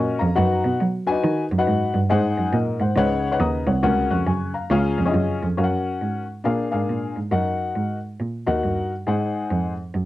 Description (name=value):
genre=uptempo gospel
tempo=138 BPM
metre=4/4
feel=swing 63% on 8ths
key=F# major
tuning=A4 = 440 Hz
part: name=warm upright piano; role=accompaniment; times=0.0-9.7 s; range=G#2 to F#6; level=-22 LUFS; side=left 4 dB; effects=cassette tape
part: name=rich cello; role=bass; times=0.0-10.1 s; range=B#1 to F#3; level=-22 LUFS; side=right 2 dB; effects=none
room=moderate studio reverb, RT60 0.5 s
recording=home recording on cassette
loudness=-20 LUFS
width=side -15 dB against mid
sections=0.0-5.6 A section; 5.6-10.1 B section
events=none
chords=0.4 B/F#; 2.1 G#7; 3.0 C#9sus4; 3.8 F#/C#; 4.7 C#; 5.6 F#; 6.5 A#7; 7.3 D#m/F#; 9.1 G#7